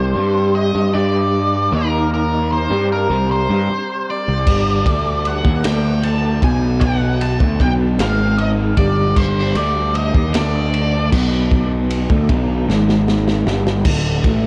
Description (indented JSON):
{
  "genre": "psychedelic rock",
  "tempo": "51 BPM (dotted quarters)",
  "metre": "6/8",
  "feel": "straight",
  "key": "unclear",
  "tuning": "A4 = 444 Hz",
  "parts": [
    { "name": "octave-fuzz lead guitar", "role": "melody", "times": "0.0-11.1 s", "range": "Bb4 to A5", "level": "-24 LUFS", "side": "equal", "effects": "wah, distortion, dub echo" },
    { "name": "tonewheel organ", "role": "sustained chords", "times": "0.0-14.5 s", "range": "D3 to G5", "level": "-32 LUFS", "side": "equal", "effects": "none" },
    { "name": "electric guitar through a small old amp", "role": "riff", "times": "0.0-14.5 s", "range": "D2 to G4", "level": "-21 LUFS", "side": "equal", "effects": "rotary speaker, dub echo" },
    { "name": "fuzz picked electric bass", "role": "bass", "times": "0.0-14.5 s", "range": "D1 to G2", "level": "-22 LUFS", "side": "equal", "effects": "overdrive" },
    { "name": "crunchy breakbeat drum kit", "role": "drums", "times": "4.5-14.4 s", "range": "crash cymbal, kick drum, ride cymbal, snare drum", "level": "-22 LUFS", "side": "equal", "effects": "none" }
  ],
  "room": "light reverb, small room ambience",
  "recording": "echo-heavy mix, cassette tape",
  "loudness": "-17 LUFS",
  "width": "mono",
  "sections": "0.0-13.9 A section",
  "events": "drum fill 12.7-13.9",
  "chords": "0.0 C5; 0.9 G5; 1.7 Eb5; 2.7 C5; 4.5 G5; 5.6 D5; 6.4 B5; 7.4 G5; 8.0 G#5; 8.8 G5; 10.3 D5; 11.1 B5; 12.1 G5; 12.7 G#5; 13.5 G5; 13.9 D"
}